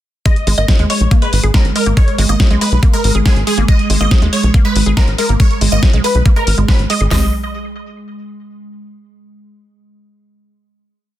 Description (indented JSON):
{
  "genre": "psychedelic trance",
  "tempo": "140 BPM",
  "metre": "4/4",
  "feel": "straight",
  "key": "G# minor",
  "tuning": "A4 = 440 Hz",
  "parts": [
    { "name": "supersaw stab", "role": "melody", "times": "0.3-7.3 s", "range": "G#4 to D#5", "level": "-20 LUFS", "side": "equal", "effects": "phaser, sidechain pumping, digital delay" },
    { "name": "evolving wavetable pad", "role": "sustained chords", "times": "0.8-7.2 s", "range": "G#3", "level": "-23 LUFS", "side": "right 2 dB", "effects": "chorus, built-in reverb, sidechain pumping" },
    { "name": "woody wave-folded pluck", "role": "riff", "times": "0.3-7.3 s", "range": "G#3 to G#4", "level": "-23 LUFS", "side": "moving between left 3 dB and right 6 dB", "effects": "chorus, auto-pan, sidechain pumping, digital delay" },
    { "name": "big-room dance drum kit", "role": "drums", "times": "0.3-7.1 s", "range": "hi-hat, snare drum", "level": "-20 LUFS", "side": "left 1 dB", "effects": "studio reverb" },
    { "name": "drum and bass drum kit", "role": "drums", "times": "0.3-7.2 s", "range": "hi-hat, kick drum, snare drum, toms", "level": "-12 LUFS", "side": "equal", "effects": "studio reverb" },
    { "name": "tight sequencer bass", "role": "bass", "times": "0.5-7.3 s", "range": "G#1 to D#2", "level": "-14 LUFS", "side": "equal", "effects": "none" }
  ],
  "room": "light reverb, digital ambience",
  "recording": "dense, heavily limited modern master",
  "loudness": "-10 LUFS",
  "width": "side -13 dB against mid",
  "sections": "0.3-7.1 drop; 7.1-8.8 final chord",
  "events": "drop 0.3-7.1",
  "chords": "0.3 G#5"
}